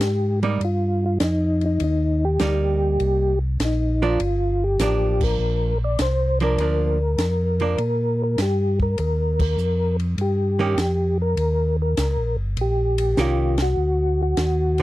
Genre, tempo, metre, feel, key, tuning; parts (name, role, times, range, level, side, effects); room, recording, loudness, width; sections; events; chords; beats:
soul jazz organ trio; 100 BPM; 4/4; swing 69% on 8ths; G minor; A4 = 440 Hz
percussive tonewheel organ; melody; 0.0-14.8 s; D4 to D5; -23 LUFS; left 1 dB; slow rotary speaker, chorus vibrato
mellow tonewheel organ; bass; 0.0-14.8 s; G1 to Bb2; -22 LUFS; equal; chorus vibrato, slow rotary speaker
compact cocktail drum kit; drums; 0.0-14.8 s; crash cymbal, hi-hat, kick drum, ride cymbal, snare drum; -27 LUFS; equal
archtop guitar, miked and amplified; accompaniment; 0.4-14.8 s; Eb3 to G4; -25 LUFS; right 5 dB
little or no reverb; dry, close 1970s-style studio recording; -19 LUFS; side -16 dB against mid
0.0-14.8 A section
band accent 5.1, 9.3, 13.5
0.0 Cm7; 4.2 Gm7; 9.0 Eb7; 13.8 D(b9)
0.01 0.60 1.20 | 1.80 2.40 3.00 3.60 | 4.20 4.79 5.39 5.99 | 6.59 7.19 7.79 8.38 | 8.98 9.58 10.18 10.78 | 11.38 11.98 12.57 13.17 | 13.77 14.37